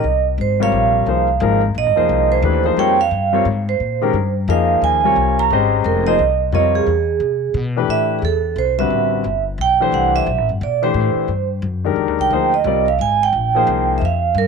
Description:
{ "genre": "modal jazz", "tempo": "176 BPM", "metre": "3/4", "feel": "swing 62% on 8ths", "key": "Bb dorian", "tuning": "A4 = 435 Hz", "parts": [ { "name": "vibraphone with medium hard mallets", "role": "melody", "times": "0.0-14.5 s", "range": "Ab4 to Bb5", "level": "-17 LUFS", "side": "right 10 dB", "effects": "none" }, { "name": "warm concert grand piano", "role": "accompaniment", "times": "0.0-14.0 s", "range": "C3 to Eb5", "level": "-20 LUFS", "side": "left 15 dB", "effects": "none" }, { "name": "upright bass", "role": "bass", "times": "0.0-14.5 s", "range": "F1 to C3", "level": "-21 LUFS", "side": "left 3 dB", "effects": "none" } ], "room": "moderate spring reverb, RT60 1.9 s, small room ambience", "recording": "1960s-style stereo with parts hard left and right", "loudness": "-14 LUFS", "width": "side -5 dB against mid", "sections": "0.0-7.9 A section; 7.9-14.5 B section", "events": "none", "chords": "0.0 Bb13sus4; 6.9 E; 7.9 Am9; 12.0 Fm9" }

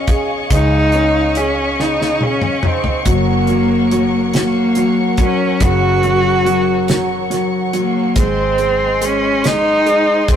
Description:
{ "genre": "six-eight pop ballad", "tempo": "47 BPM (dotted quarters)", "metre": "6/8", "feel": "straight", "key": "unclear", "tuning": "A4 = 440 Hz", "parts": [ { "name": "rich cello", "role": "melody", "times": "0.0-10.4 s", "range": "Bb3 to Gb4", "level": "-16 LUFS", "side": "equal", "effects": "none" }, { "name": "clear grand piano", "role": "accompaniment", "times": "0.0-10.4 s", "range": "Db3 to Ab4", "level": "-20 LUFS", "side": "left 1 dB", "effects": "none" }, { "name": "dark studio string section", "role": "sustained chords", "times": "0.0-10.4 s", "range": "Ab4 to Db6", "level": "-22 LUFS", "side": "right 1 dB", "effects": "none" }, { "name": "vintage muted fingered electric bass", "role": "bass", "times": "0.0-10.4 s", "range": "Gb1 to Db2", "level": "-21 LUFS", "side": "equal", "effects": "none" }, { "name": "damped 70s drum kit", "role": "drums", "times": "0.1-10.4 s", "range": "hi-hat, kick drum, snare drum, toms", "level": "-18 LUFS", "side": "equal", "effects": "none" } ], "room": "moderate stone room reverb, RT60 1.1 s", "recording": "rough rehearsal-room recording, warm saturation", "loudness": "-13 LUFS", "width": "side -9 dB against mid", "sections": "0.0-10.4 A section", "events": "drum fill 1.8-3.1", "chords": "0.0 Dbadd9; 3.1 Gb; 8.2 Ab" }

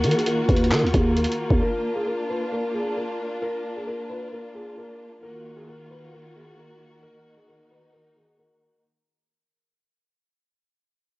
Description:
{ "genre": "hip hop, trap", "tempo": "133 BPM", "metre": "4/4", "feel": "half-time", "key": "Eb harmonic minor", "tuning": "A4 = 440 Hz", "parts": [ { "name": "felt-muted upright piano", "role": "melody", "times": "0.0-8.8 s", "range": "Ab4 to Cb5", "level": "-29 LUFS", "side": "left 1 dB", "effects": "low-pass filter" }, { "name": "dark symphonic string section", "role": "sustained chords", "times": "0.0-8.8 s", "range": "Eb3 to Gb4", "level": "-29 LUFS", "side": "equal", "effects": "none" }, { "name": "growling 808-style bass", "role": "bass", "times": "0.0-1.6 s", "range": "Eb2 to Eb3", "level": "-21 LUFS", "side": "equal", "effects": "none" }, { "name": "lo-fi sampler-style drum kit", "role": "drums", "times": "0.0-1.6 s", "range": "handclaps, hi-hat, kick drum", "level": "-24 LUFS", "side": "equal", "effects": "cassette tape" } ], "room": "light reverb", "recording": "home recording on cassette, nothing above 7.8 kHz", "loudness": "-22 LUFS", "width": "side -20 dB against mid", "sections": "0.0-8.8 A section", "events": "fade-out 0.0-8.8", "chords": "0.0 Ebmadd9; 1.6 Bb; 5.2 Ebmadd9" }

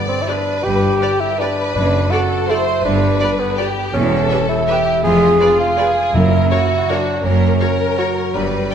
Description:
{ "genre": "classical, orchestral ballroom waltz", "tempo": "164 BPM", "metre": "3/4", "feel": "uneven beats, rubato", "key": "unclear", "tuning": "A4 = 438 Hz", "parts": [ { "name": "warm symphonic violin section", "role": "second line", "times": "0.0-8.7 s", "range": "F4 to D5", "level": "-22 LUFS", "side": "left 2 dB", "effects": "none" }, { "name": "warm bassoon", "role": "accompaniment", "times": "0.0-8.7 s", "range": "F#3 to Ab4", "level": "-17 LUFS", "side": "right 1 dB", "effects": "none" }, { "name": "concert harp", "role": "arpeggios", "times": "0.0-8.7 s", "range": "E2 to E5", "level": "-24 LUFS", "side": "left 7 dB", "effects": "none" }, { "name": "warm symphonic violin section", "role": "melody", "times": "0.3-8.7 s", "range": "C#5 to G5", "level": "-28 LUFS", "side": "left 3 dB", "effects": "none" }, { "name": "warm symphonic viola section", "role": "accompaniment", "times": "0.3-8.7 s", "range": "F#4 to B4", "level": "-27 LUFS", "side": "right 2 dB", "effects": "none" }, { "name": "rich symphonic cello section", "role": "bass", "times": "0.6-8.6 s", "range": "E2 to G2", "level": "-23 LUFS", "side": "right 2 dB", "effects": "none" }, { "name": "rich symphonic double bass section", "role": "bass", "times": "0.6-8.6 s", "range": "E1 to G1", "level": "-22 LUFS", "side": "right 2 dB", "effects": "none" }, { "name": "timpani", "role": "percussion", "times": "1.8-2.3, 6.1-6.7 s", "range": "F#2", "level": "-22 LUFS", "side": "left 1 dB", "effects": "none" } ], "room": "wet scoring stage reverb, RT60 1.8 s", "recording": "none", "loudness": "-14 LUFS", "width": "side -8 dB against mid", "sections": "0.0-8.7 A section", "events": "none", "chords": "0.0 G; 1.8 D/F#; 2.9 G; 4.0 C#m7b5/E; 5.1 Fdim7; 6.2 F#7" }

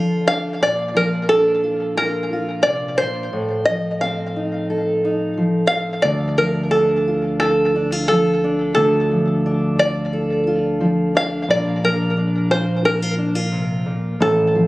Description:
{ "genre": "indie folk with a building arrangement", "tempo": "88 BPM", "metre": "4/4", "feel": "straight", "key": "Bb major", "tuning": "A4 = 438 Hz", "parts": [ { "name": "fingerpicked steel-string acoustic guitar", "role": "accompaniment", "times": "0.0-14.7 s", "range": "A2 to Bb4", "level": "-22 LUFS", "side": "equal", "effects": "none" }, { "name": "open-back banjo", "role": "melody", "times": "0.3-14.7 s", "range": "A4 to F5", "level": "-18 LUFS", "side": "equal", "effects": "tape echo" }, { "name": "picked electric bass", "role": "bass", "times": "6.0-14.7 s", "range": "A1 to D2", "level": "-22 LUFS", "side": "equal", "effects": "none" } ], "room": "light reverb, studio reverb", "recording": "recorded on a phone in the room, club ambience", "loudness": "-16 LUFS", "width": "side -19 dB against mid", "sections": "0.0-14.7 A section", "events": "none", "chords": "0.0 Dm; 0.6 Bbadd9; 3.3 F7/A; 6.0 Dm; 11.5 Bbadd9" }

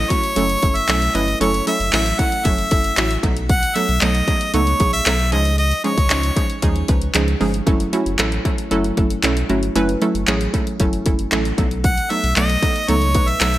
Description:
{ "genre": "dance-pop", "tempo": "115 BPM", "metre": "4/4", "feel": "straight", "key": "F# dorian", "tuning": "A4 = 440 Hz", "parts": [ { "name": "clear harmonica", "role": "melody", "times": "0.0-6.6, 11.8-13.6 s", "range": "C#5 to F#5", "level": "-20 LUFS", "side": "equal", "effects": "none" }, { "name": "hollow square pluck", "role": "accompaniment", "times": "0.0-13.6 s", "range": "E#3 to B4", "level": "-21 LUFS", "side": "right 2 dB", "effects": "chorus, sidechain pumping" }, { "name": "warm sub bass", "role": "bass", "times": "0.0-13.6 s", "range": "F#1 to D#2", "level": "-22 LUFS", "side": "equal", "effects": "sidechain pumping" }, { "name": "house drum kit", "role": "drums", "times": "0.1-13.6 s", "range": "handclaps, hi-hat, kick drum", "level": "-20 LUFS", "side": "equal", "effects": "gated reverb" } ], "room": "light reverb", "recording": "bright 1980s-style digital production", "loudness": "-15 LUFS", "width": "side -15 dB against mid", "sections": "0.0-13.6 A section", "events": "none", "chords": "0.0 F#m7; 3.2 B7; 5.3 C#add9; 7.7 F#m7; 11.6 B7" }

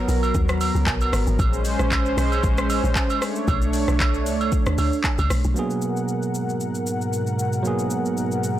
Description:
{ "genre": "amapiano", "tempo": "115 BPM", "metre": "4/4", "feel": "swing 55% on 16ths", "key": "unclear", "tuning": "A4 = 439 Hz", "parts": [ { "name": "warm analog pad", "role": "sustained chords", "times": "0.0-8.6 s", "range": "G#2 to F#5", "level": "-24 LUFS", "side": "equal", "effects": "chorus, sidechain pumping" }, { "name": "deep log drum bass", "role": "bass", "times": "0.0-5.6 s", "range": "G#1 to D#2", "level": "-22 LUFS", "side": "equal", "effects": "none" }, { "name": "afro-pop drum kit", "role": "drums", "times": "0.1-8.6 s", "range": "handclaps, hi-hat, kick drum, rim click, shaker", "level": "-25 LUFS", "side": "equal", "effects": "none" }, { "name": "agogo bells and woodblock", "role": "percussion", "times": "0.2-5.3 s", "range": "none", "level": "-29 LUFS", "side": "right 6 dB", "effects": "none" }, { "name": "bell-like tine electric piano", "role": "accompaniment", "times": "5.5-8.6 s", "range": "F#3 to G#4", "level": "-25 LUFS", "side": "right 3 dB", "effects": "none" } ], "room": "digital ambience", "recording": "blown-out, overdriven recording, overdrive", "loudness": "-20 LUFS", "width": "side -12 dB against mid", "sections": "0.0-5.6 A section; 5.6-8.6 B section", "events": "drop 0.0-5.6", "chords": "0.0 G#m9; 1.4 A#m9; 3.2 Bm9; 5.6 G#m9" }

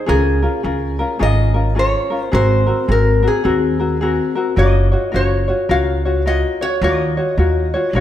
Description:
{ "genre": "Hawaiian", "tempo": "107 BPM", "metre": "4/4", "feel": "swing 63% on 8ths", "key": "Db major", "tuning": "A4 = 440 Hz", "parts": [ { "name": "ukulele", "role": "accompaniment", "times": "0.0-8.0 s", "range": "C4 to Db5", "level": "-18 LUFS", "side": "left 3 dB", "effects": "none" }, { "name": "metal-body resonator slide guitar", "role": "melody", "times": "0.1-8.0 s", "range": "Ab4 to F5", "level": "-21 LUFS", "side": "equal", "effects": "none" }, { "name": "upright bass", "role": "bass", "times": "0.1-8.0 s", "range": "Gb1 to Eb2", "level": "-17 LUFS", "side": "equal", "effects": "none" } ], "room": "moderate recital hall reverb, RT60 1.4 s", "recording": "none", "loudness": "-14 LUFS", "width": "side -11 dB against mid", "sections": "0.1-8.0 A section", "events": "none", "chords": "0.1 Db6; 2.3 Ab9; 4.6 Gbmaj7; 6.8 Ebm9" }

